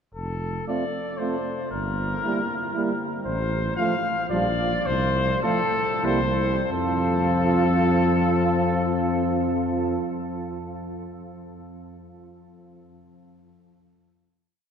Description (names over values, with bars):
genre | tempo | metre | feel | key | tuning
classical, brass quintet | 89-118 BPM | 3/4 | rubato | F major | A4 = 441 Hz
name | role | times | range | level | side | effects
warm bass trombone | bass | 0.1-10.0 s | F1 to F2 | -28 LUFS | equal | none
clear trumpet | melody | 0.2-10.0 s | A4 to F5 | -27 LUFS | left 2 dB | none
mellow flugelhorn | second line | 0.7-9.9 s | E4 to F4 | -31 LUFS | right 5 dB | none
clear trombone | accompaniment | 0.7-10.0 s | F3 to A3 | -30 LUFS | right 1 dB | none
dark French horn | accompaniment | 0.7-9.9 s | G3 to C4 | -30 LUFS | left 1 dB | none
room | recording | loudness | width
wet cathedral reverb, RT60 6.5 s | dark, warm production | -21 LUFS | side -7 dB against mid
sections
0.1-6.7 theme; 6.7-10.6 final chord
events
slowing down 2.5-6.7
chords
0.1 F; 1.7 Edim/G; 3.3 F/A; 4.3 Gm7/Bb; 4.9 F/C; 6.0 C7; 6.7 F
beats
| 0.15 0.68 1.19 | 1.72 2.24 2.75 | 3.26 3.78 4.30 | 4.86 5.43 6.04 | 6.70 7.34 7.99 | 8.63 9.28 9.92